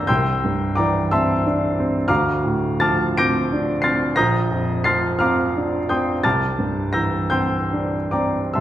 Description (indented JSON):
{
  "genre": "classical, impressionist solo piano",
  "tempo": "46-63 BPM (dotted quarters)",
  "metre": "6/8",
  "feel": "rubato",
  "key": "unclear",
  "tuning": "A4 = 440 Hz",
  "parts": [
    { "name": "clear baby grand piano", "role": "solo", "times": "0.0-8.6 s", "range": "Bb1 to D7", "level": "-18 LUFS", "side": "equal", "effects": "none" }
  ],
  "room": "wet recital hall reverb, RT60 1.7 s",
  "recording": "heard from further back in the room, nothing above 10.5 kHz",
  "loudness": "-18 LUFS",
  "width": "side -12 dB against mid",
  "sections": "0.0-8.6 A section",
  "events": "none",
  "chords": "0.1 C9; 2.1 Dm7; 4.2 Bbadd9; 6.2 C9"
}